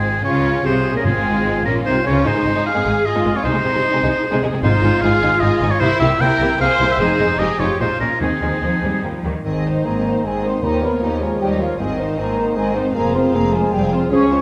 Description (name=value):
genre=classical, dramatic, fast romantic movement for symphony orchestra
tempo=152 BPM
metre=3/4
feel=straight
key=Ab major from 4.6 s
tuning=A4 = 440 Hz
part: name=dark studio violin section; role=melody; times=0.0-14.4 s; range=C4 to F5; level=-30 LUFS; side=equal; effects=none
part: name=clear oboe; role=second line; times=0.0-9.0 s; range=Ab4 to G5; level=-22 LUFS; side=equal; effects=none
part: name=warm symphonic violin section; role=second line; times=0.0-14.4 s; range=G3 to Db5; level=-28 LUFS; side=equal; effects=none
part: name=rich studio double bass section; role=bass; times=0.0-14.4 s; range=F1 to Eb2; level=-27 LUFS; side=equal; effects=none
part: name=rich symphonic cello section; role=bass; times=0.0-14.4 s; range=Db2 to G3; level=-26 LUFS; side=equal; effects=none
part: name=rich symphonic viola section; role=accompaniment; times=0.3-14.4 s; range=C4 to C5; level=-26 LUFS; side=equal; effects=none
part: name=timpani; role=percussion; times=1.0-1.6, 4.6-5.2, 8.2-11.2 s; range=Ab2 to Eb3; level=-29 LUFS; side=equal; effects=none
part: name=warm bassoon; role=accompaniment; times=9.4-14.3 s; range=Eb3 to F3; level=-29 LUFS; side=equal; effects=none
part: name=bright large flute ensemble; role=second line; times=9.5-14.4 s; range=Eb5 to Db6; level=-29 LUFS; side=equal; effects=none
part: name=warm clarinet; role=second line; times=9.5-14.3 s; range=Ab4 to Db5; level=-29 LUFS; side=equal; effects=none
part: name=mellow French horn section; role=sustained chords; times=9.5-14.4 s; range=Eb3 to Db4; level=-22 LUFS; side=equal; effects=none
room=wet scoring stage reverb, RT60 2.0 s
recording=none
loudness=-18 LUFS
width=mono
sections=0.0-9.5 A section; 9.5-14.4 B section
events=none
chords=0.0 Fm/Ab; 2.3 Ab; 3.5 Ab/C; 4.6 Ab; 5.8 C7; 7.0 Fm7; 7.8 Bbm7; 8.2 Ab/Eb; 9.0 N.C.; 9.5 Ab; 10.6 Eb9; 11.8 Ab; 13.0 Fm